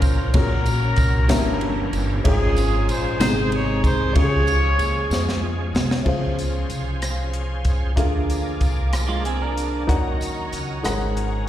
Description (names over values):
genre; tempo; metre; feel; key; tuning
slow gospel; 63 BPM (dotted quarters); 6/8; straight; Db major; A4 = 440 Hz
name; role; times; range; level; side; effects
warm horn section; melody; 0.0-5.4 s; Db4 to Db5; -24 LUFS; equal; slapback echo
warm baby grand piano; accompaniment; 0.0-11.5 s; G2 to Gb5; -26 LUFS; left 3 dB; slapback echo
bright tonewheel organ; sustained chords; 0.0-11.5 s; C3 to C5; -31 LUFS; right 3 dB; slow rotary speaker, overdrive, chorus vibrato
upright bass; bass; 0.0-11.4 s; G1 to F2; -23 LUFS; equal; none
crisp fusion drum kit; drums; 0.0-11.3 s; crash cymbal, hi-hat, kick drum, ride cymbal, rim click, snare drum; -23 LUFS; equal; none
tambourine; percussion; 0.0-11.1 s; none; -38 LUFS; right 2 dB; none
muted studio string section; sustained chords; 6.1-11.5 s; Db5 to D6; -35 LUFS; equal; none
clean electric guitar; second line; 9.1-9.9 s; Ab3 to Bb4; -27 LUFS; right 5 dB; vibrato effect, slapback echo
room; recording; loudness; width
small room ambience; live gig heard through the venue's PA, recital hall reverb; -19 LUFS; side -12 dB against mid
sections
0.0-6.1 A section; 6.1-11.5 B section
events
drum fill 5.1-6.1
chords
0.3 Gb/Bb; 1.3 Gdim7; 2.2 Db/Ab; 3.2 Ab; 4.2 Db; 6.1 Dbmaj7; 8.0 Bb7; 9.9 Ebm7; 10.8 Ab9sus4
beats
| 0.34 1.29 | 2.24 3.20 | 4.15 5.11 | 6.06 7.02 | 7.97 8.93 | 9.88 10.84